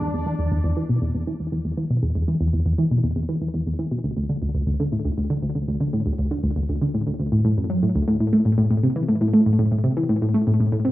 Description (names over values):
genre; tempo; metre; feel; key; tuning
ambient; 119 BPM; 4/4; straight; unclear; A4 = 439 Hz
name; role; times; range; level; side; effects
analog pluck; riff; 0.0-10.9 s; D2 to A3; -20 LUFS; equal; chorus, cassette tape, ping-pong delay
room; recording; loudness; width
wet small room reverb, RT60 0.5 s; home recording on cassette; -20 LUFS; side -16 dB against mid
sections
0.0-10.9 A section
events
none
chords
none